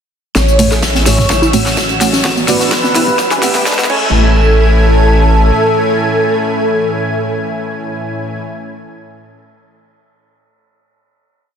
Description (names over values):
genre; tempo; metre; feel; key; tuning
progressive house; 127 BPM; 4/4; straight; A major; A4 = 441 Hz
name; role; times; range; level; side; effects
expressive synth lead; melody; 0.4-8.4 s; A4 to C#5; -16 LUFS; equal; ensemble chorus, sidechain pumping, dub echo
lush unison pad; sustained chords; 0.4-8.4 s; A2 to G#5; -19 LUFS; equal; chorus, sidechain pumping
wide unison pluck; arpeggios; 0.4-8.4 s; A3 to A4; -20 LUFS; equal; sidechain pumping, ping-pong delay
round analog bass; bass; 0.4-5.5 s; A1; -14 LUFS; equal; tube saturation, sidechain pumping
big rock drum kit; drums; 0.4-3.8 s; hi-hat, ride cymbal, snare drum; -22 LUFS; right 1 dB; sidechain pumping on cymbals, high-pass filter on cymbals, studio reverb, sidechain pumping on hats, high-pass filter on hats, high-pass filter on snare, high-pass filter on room
deep house drum kit; drums; 0.4-4.0 s; crash cymbal, hi-hat, snare drum, tambourine; -18 LUFS; left 2 dB; overdrive, high-pass filter on snare, studio reverb, high-pass filter on perc, high-pass filter on hats, high-pass filter on cymbals
electronic kick drum; drums; 0.4-4.0 s; none; -23 LUFS; left 1 dB; none
electronic congas and toms; percussion; 0.4-3.5 s; none; -21 LUFS; right 2 dB; sidechain pumping on perc, studio reverb, sidechain pumping on toms
riser; sound effects; 1.9-4.1 s; none; -24 LUFS; left 1 dB; none
twinkling granular texture; texture; 0.9-4.1 s; E6; -24 LUFS; right 1 dB; built-in reverb, sidechain pumping
deep mellow chord stab; stabs; 0.6-8.4 s; A2 to G#5; -19 LUFS; right 4 dB; chorus, sidechain pumping, ping-pong delay
room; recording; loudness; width
light reverb; dense, heavily limited modern master, high-pass filter; -10 LUFS; side -8 dB against mid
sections
0.4-4.1 build; 4.1-7.9 final hit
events
build-up 0.4-4.1; drum fill 0.4-4.1; filter sweep on synth pluck 0.4-4.1; filter sweep on synth stab 0.4-4.1; filter sweep on analog synth pad 0.4-4.1; filter sweep 0.4-4.1; riser 1.9-4.1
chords
0.4 Amaj7; 1.3 F#m/A; 2.2 Bm/A; 3.2 Em/A; 3.9 Amaj7